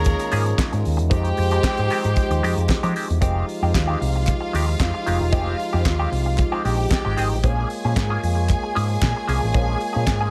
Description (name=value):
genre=disco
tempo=114 BPM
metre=4/4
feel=straight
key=F minor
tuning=A4 = 440 Hz
part: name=rich studio string section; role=second line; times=0.0-10.3 s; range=F4 to Bb5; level=-31 LUFS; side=equal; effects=none
part: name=percussive tonewheel organ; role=sustained chords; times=0.0-10.3 s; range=Eb3 to Db5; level=-32 LUFS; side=equal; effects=overdrive, slow rotary speaker
part: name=mellow horn section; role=stabs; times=0.0-2.9 s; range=Ab3 to Db5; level=-28 LUFS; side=equal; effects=none
part: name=picked electric bass with an envelope filter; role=bass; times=0.0-10.3 s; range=E1 to F3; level=-24 LUFS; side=equal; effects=none
part: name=damped 70s drum kit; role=drums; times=0.0-10.2 s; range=handclaps, hi-hat, kick drum, snare drum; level=-26 LUFS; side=equal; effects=none
part: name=semi-hollow electric guitar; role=accompaniment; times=0.1-10.3 s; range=Eb3 to Ab4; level=-30 LUFS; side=equal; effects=wah
part: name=group handclap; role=percussion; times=0.6-10.2 s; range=none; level=-36 LUFS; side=equal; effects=none
room=small room ambience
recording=none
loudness=-21 LUFS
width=mono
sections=0.0-3.2 A section; 3.2-10.3 B section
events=none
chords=0.0 Eb9sus4; 1.1 Fm9; 7.4 Bbm7